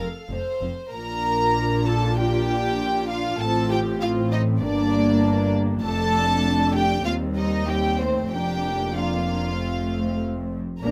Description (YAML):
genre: quick classical-period movement for string orchestra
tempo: 97 BPM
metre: 4/4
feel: straight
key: Bb major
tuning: A4 = 440 Hz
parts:
  - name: warm symphonic violin section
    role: melody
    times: 0.0-10.9 s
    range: C5 to Bb5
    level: -30 LUFS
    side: equal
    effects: none
  - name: warm symphonic violin section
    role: second line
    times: 0.0-10.9 s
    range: C4 to C5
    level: -31 LUFS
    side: equal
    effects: none
  - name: dark symphonic viola section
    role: accompaniment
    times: 0.0-10.9 s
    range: G3 to A4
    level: -28 LUFS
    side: equal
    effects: none
  - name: rich symphonic double bass section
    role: bass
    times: 0.0-10.9 s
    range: F1 to Eb2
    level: -30 LUFS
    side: equal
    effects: none
  - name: warm symphonic cello section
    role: bass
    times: 0.0-10.9 s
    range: Eb2 to Bb2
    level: -32 LUFS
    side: equal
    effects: none
room: light reverb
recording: close, detailed microphones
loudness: -23 LUFS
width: mono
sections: 0.9-10.9 A section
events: none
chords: 0.0 F; 0.9 Bb; 3.4 F/A; 4.6 Gm; 5.8 Dm/F; 7.1 Cm/Eb; 8.3 Bb/F; 9.6 F